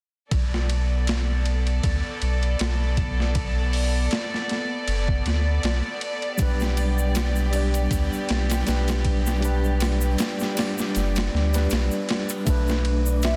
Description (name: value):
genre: trip hop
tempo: 79 BPM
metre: 4/4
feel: swing 55% on 16ths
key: B minor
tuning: A4 = 440 Hz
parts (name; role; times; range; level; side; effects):
- warm studio string section; sustained chords; 0.3-12.4 s; B3 to D5; -33 LUFS; equal; none
- warm sub bass; bass; 0.3-13.4 s; F#1 to D2; -25 LUFS; equal; none
- boom bap sampler-style drum kit; drums; 0.3-13.4 s; hi-hat, kick drum, ride cymbal, snare drum; -30 LUFS; equal; overdrive
- overdriven tine electric piano; accompaniment; 6.4-13.4 s; G3 to D5; -30 LUFS; equal; harmonic tremolo, vintage 12-bit sampler grit, tape echo
- egg shaker and triangle; percussion; 6.4-13.4 s; none; -40 LUFS; equal; none
- wind-like tuned noise texture; texture; 12.9-13.4 s; D5; -43 LUFS; equal; none
- bright reedy baroque flute; melody; 13.2-13.4 s; E5; -28 LUFS; equal; none
room: little or no reverb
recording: dense, heavily limited modern master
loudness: -24 LUFS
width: mono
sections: 0.3-12.5 A section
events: none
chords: 0.3 Bm7; 6.4 G/B; 12.5 Bm7